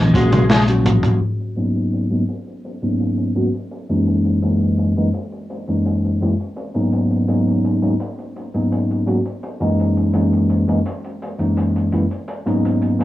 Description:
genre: vaporwave.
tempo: 84 BPM.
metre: 4/4.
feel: straight.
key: unclear.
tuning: A4 = 440 Hz.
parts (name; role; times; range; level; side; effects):
bell-like tine electric piano; accompaniment; 0.0-13.0 s; F#2 to F#4; -17 LUFS; equal; wide subtle chorus, cassette tape, analog delay.
fretless electric bass; bass; 0.0-1.0 s; A#1; -17 LUFS; equal; tube saturation.
biting lead guitar; melody; 0.1-0.6 s; G#3; -26 LUFS; left 1 dB; overdrive, tape echo.
crunchy breakbeat drum kit; drums; 0.1-13.0 s; hi-hat, snare drum, toms; -24 LUFS; equal; cassette tape.
room: moderate booth ambience, RT60 0.2 s.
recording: home recording on cassette, low-pass filter, small room ambience.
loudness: -16 LUFS.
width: side -15 dB against mid.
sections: 0.0-1.2 A section; 1.2-13.0 B section.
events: drum fill 0.0-1.2; filter sweep 1.2-13.0.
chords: 0.0 D#m7 (rootless); 1.2 F#13.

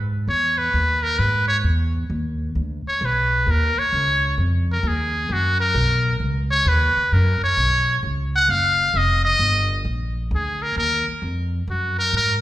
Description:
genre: jazz, small-group swing and bop.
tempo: 132 BPM.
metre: 4/4.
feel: swing 67% on 8ths.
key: F# major from 7.1 s.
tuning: A4 = 439 Hz.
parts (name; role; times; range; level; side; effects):
upright bass; bass; 0.0-12.4 s; F1 to G#2; -22 LUFS; equal; none.
trumpet with metal mute; melody; 0.3-12.3 s; F#4 to F#5; -20 LUFS; equal; none.
room: wet recital hall reverb, RT60 1.7 s.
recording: recorded in a church or concert hall.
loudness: -18 LUFS.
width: side -14 dB against mid.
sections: 0.0-7.1 A section; 7.1-12.4 A section.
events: muted trumpet solo 0.0-12.4.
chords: 0.0 Emaj7; 1.6 E5; 3.5 Ebm9; 6.2 Dbsus2; 7.1 F#5; 8.9 Fsus2; 9.9 A#; 10.8 D#m.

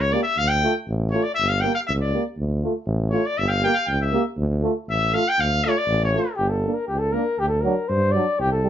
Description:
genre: balkan folk.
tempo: 120 BPM.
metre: 2/4.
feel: straight.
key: D harmonic minor.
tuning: A4 = 440 Hz.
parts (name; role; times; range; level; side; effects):
clear trumpet; second line; 0.0-6.4 s; C#5 to G5; -22 LUFS; left 2 dB; none.
mellow tuba; bass; 0.0-8.7 s; G1 to G2; -24 LUFS; equal; none.
clear euphonium; accompaniment; 0.1-8.7 s; F#3 to Bb3; -26 LUFS; right 4 dB; none.
mellow trombone; accompaniment; 0.1-8.7 s; D4 to G4; -30 LUFS; left 4 dB; none.
mellow flugelhorn; melody; 6.4-8.7 s; G4 to D5; -22 LUFS; left 1 dB; none.
room: moderate small room reverb, RT60 0.6 s.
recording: nothing above 7.6 kHz.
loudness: -20 LUFS.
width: side -10 dB against mid.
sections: 0.0-6.4 A section; 6.4-8.7 B section.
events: trumpet solo 0.0-6.4.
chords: 0.4 Dm; 1.4 Gm; 2.4 Dm; 3.4 Gm; 4.4 Dm; 6.4 Gm; 7.4 D.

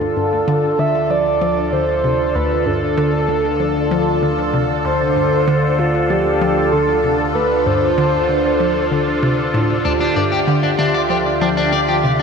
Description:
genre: ambient, sequencer-driven space music.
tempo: 96 BPM.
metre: 4/4.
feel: straight.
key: D minor.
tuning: A4 = 440 Hz.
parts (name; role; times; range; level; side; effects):
breathy flute-like synth lead; melody; 0.0-9.5 s; F4 to E5; -19 LUFS; right 1 dB; chorus, ping-pong delay.
phased analog pad; sustained chords; 0.0-12.2 s; D3 to A4; -19 LUFS; equal; phaser, chorus.
hollow square pluck; riff; 0.0-12.1 s; D2 to F3; -22 LUFS; equal; chorus, ping-pong delay.
analog drone; bass; 1.0-12.2 s; D2; -26 LUFS; equal; chorus.
wind-like tuned noise texture; texture; 0.3-12.2 s; D4 to E5; -27 LUFS; right 1 dB; built-in reverb.
electric guitar at the edge of break-up; arpeggios; 9.8-12.2 s; D4 to D5; -19 LUFS; left 4 dB; auto-pan, ping-pong delay.
room: wet lush hall reverb, RT60 3.0 s.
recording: none.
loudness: -14 LUFS.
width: side -6 dB against mid.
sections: 0.0-12.2 A section.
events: none.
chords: 0.0 Dm.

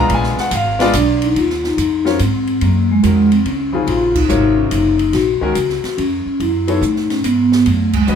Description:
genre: modal jazz.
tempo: 143 BPM.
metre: 3/4.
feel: swing 67% on 8ths.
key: Eb dorian.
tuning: A4 = 439 Hz.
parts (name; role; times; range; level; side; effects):
warm baby grand piano; accompaniment; 0.0-8.2 s; C3 to A#5; -18 LUFS; left 3 dB; none.
upright bass; bass; 0.0-8.2 s; Gb1 to A2; -20 LUFS; equal; none.
open jazz drum kit; drums; 0.1-8.2 s; crash cymbal, hi-hat, kick drum, ride cymbal, snare drum; -24 LUFS; right 2 dB; none.
vibraphone with soft mallets; melody; 1.0-8.2 s; Ab3 to Gb4; -15 LUFS; equal; none.
room: light reverb.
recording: minimal, uncompressed stereo recording.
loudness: -13 LUFS.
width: side -7 dB against mid.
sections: 0.0-1.4 A section; 1.4-8.2 B section.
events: band accent 4.1, 7.9.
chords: 0.1 A#7b9; 1.4 Ebm11; 6.4 Gbmadd9.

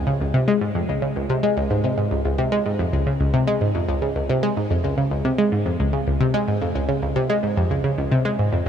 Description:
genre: ambient.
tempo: 110 BPM.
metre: 4/4.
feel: straight.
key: Db major.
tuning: A4 = 440 Hz.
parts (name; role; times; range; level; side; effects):
analog pluck; solo; 0.0-8.7 s; Db2 to Ab3; -19 LUFS; equal; chorus, phaser, ping-pong delay.
room: moderate huge ambient reverb, RT60 6.9 s.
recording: none.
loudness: -19 LUFS.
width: side -8 dB against mid.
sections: 0.0-8.7 A section.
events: none.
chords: none.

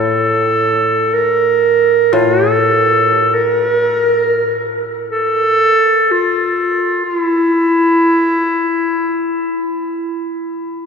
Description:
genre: japanese traditional, Japanese chamber music.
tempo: free time.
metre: none.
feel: none.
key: unclear.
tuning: A4 = 444 Hz.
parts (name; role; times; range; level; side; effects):
clear clarinet; melody; 0.0-10.2 s; E4 to Bb4; -12 LUFS; equal; none.
koto; accompaniment; 0.0-5.5 s; A2; -21 LUFS; left 4 dB; none.
room: wet cathedral reverb, RT60 7.1 s.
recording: recorded in a church or concert hall.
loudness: -12 LUFS.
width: side -6 dB against mid.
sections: 0.0-10.9 A section.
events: slowing down 7.9-10.9.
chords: none.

